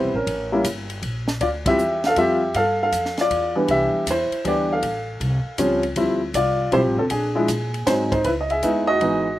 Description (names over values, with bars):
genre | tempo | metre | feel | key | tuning
jazz piano trio | 158 BPM | 3/4 | swing 66% on 8ths | A minor | A4 = 444 Hz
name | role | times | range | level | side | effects
warm baby grand piano | melody | 0.0-9.4 s | E3 to F5 | -19 LUFS | equal | none
upright bass | bass | 0.0-9.4 s | F1 to Bb2 | -28 LUFS | equal | none
compact cocktail drum kit | drums | 0.3-9.1 s | hi-hat, kick drum, ride cymbal, snare drum | -31 LUFS | equal | none
room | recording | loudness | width
little or no reverb | recorded outdoors, with no room sound | -19 LUFS | side -14 dB against mid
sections
0.0-8.2 A section; 8.2-9.4 B section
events
band accent 1.6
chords
0.3 A7b9; 1.4 Dm11; 2.5 G7sus2; 3.7 Cmaj9; 4.8 A7alt; 6.0 Dm11; 7.1 Bb7; 7.9 G#7; 8.2 C#m7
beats
| 0.27 0.65 1.03 | 1.41 1.79 2.17 | 2.55 2.93 3.31 | 3.69 4.07 4.45 | 4.83 5.21 5.58 | 5.96 6.35 6.73 | 7.11 7.49 7.87 | 8.25 8.63 9.01